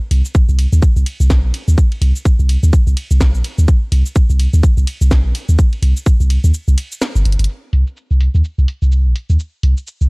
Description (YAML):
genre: minimal techno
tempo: 126 BPM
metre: 4/4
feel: swing 59% on 16ths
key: C minor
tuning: A4 = 439 Hz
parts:
  - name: punchy sub bass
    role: bass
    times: 0.1-10.1 s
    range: G1 to Eb2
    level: -12 LUFS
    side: equal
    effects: sidechain pumping
  - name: garage drum kit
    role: drums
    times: 0.1-10.1 s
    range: cabasa, hi-hat, ride cymbal, snare drum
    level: -25 LUFS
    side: equal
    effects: low-pass filter on perc, low-pass filter on hats, low-pass filter on cymbals, low-pass filter on snare
  - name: electronic kick drum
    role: drums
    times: 0.3-6.2 s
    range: none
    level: -12 LUFS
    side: equal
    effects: none
room: little or no reverb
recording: dry, gritty hardware recording, cassette tape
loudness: -12 LUFS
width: side -36 dB against mid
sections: 0.0-7.5 A section; 7.5-10.1 B section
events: drop 0.0-7.5; break 6.5-7.5; drum fill 7.3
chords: none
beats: 0.35 0.82 1.30 | 1.78 2.25 2.73 3.21 | 3.68 4.16 4.63 5.11 | 5.59 6.06 6.54 7.02 | 7.49 7.97 8.44 8.92 | 9.40 9.87